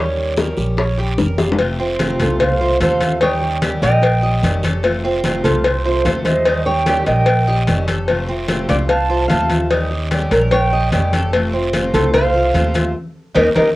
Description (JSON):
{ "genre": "latin, Cuban son and guajira", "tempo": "148 BPM", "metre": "4/4", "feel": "straight", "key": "F major", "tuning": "A4 = 440 Hz", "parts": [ { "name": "picked steel-string acoustic guitar", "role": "accompaniment", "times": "0.0-13.7 s", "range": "C3 to G4", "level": "-24 LUFS", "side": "left 1 dB", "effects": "cassette tape" }, { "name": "Cuban tres", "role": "arpeggios", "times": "0.0-13.7 s", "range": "C4 to Eb5", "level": "-24 LUFS", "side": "right 3 dB", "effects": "cassette tape" }, { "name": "upright bass", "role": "bass", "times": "0.0-13.7 s", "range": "F1 to Eb2", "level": "-20 LUFS", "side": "equal", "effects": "none" }, { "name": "congas", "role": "percussion", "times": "0.2-13.7 s", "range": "none", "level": "-23 LUFS", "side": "equal", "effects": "none" }, { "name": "bongos and cowbell", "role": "percussion", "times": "0.4-13.7 s", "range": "none", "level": "-20 LUFS", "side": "left 3 dB", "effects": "none" }, { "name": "guiro", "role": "percussion", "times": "0.4-13.6 s", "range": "none", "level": "-33 LUFS", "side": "right 4 dB", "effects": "none" }, { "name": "nylon-string guitar", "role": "melody", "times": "2.2-13.7 s", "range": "A4 to F5", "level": "-19 LUFS", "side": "equal", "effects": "cassette tape" }, { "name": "mellow silver concert flute", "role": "second line", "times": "2.2-13.7 s", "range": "C5 to A5", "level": "-21 LUFS", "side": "right 2 dB", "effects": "cassette tape" } ], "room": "moderate studio ambience, RT60 0.5 s", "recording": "home recording on cassette", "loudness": "-14 LUFS", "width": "side -18 dB against mid", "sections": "0.0-1.6 A section; 1.6-13.8 B section", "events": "drum fill 1.4; band accent 12.9-13.8", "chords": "0.0 Eb7; 1.6 F; 3.2 Eb7; 4.8 F; 6.5 Eb7; 8.1 F; 9.7 Eb7; 11.3 F; 12.9 Eb7", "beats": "0.37 0.78 1.18 | 1.59 2.00 2.40 2.81 | 3.21 3.62 4.03 4.43 | 4.84 5.24 5.65 6.06 | 6.46 6.87 7.27 7.68 | 8.09 8.49 8.90 9.30 | 9.71 10.11 10.52 10.92 | 11.33 11.73 12.14 12.54 | 12.95 13.36" }